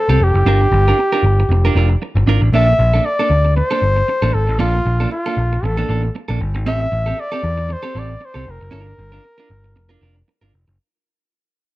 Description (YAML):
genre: disco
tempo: 116 BPM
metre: 4/4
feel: swing 56% on 16ths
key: unclear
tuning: A4 = 440 Hz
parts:
  - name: warm flugelhorn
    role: melody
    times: 0.0-10.3 s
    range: F4 to E5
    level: -19 LUFS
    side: equal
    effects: slapback echo
  - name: clean electric guitar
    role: accompaniment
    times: 0.1-10.7 s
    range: Bb3 to Bb4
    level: -23 LUFS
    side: right 5 dB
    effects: none
  - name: picked electric bass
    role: bass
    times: 0.1-10.8 s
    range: F1 to E2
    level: -16 LUFS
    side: equal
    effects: none
room: small room ambience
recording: dry, close 1970s-style studio recording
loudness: -14 LUFS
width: side -17 dB against mid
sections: 0.0-2.5 A section; 2.5-10.8 B section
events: fade-out 2.5-10.8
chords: 0.5 Gm7; 2.5 Bbmaj7; 6.7 Am7; 8.7 Gm7